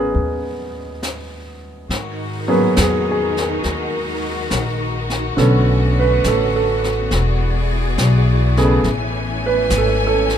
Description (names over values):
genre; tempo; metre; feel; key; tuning
jazz ballad; 69 BPM; 4/4; swing 68% on 8ths; unclear; A4 = 441 Hz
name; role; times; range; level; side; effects
warm baby grand piano; accompaniment; 0.0-10.4 s; C#3 to F#5; -19 LUFS; right 2 dB; none
upright bass; bass; 0.0-10.4 s; E1 to G#2; -20 LUFS; left 1 dB; none
jazz brush drum kit; drums; 0.2-10.4 s; brushed snare drum, hi-hat, snare drum; -27 LUFS; left 2 dB; none
clear symphonic string section; sustained chords; 1.9-10.4 s; D3 to G#5; -23 LUFS; left 2 dB; none
room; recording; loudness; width
little or no reverb; minimal, uncompressed stereo recording; -15 LUFS; side -9 dB against mid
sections
0.0-1.9 A section; 1.9-10.4 B section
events
none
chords
0.0 G#m9; 5.4 Bm9; 7.1 E9; 8.8 Amaj9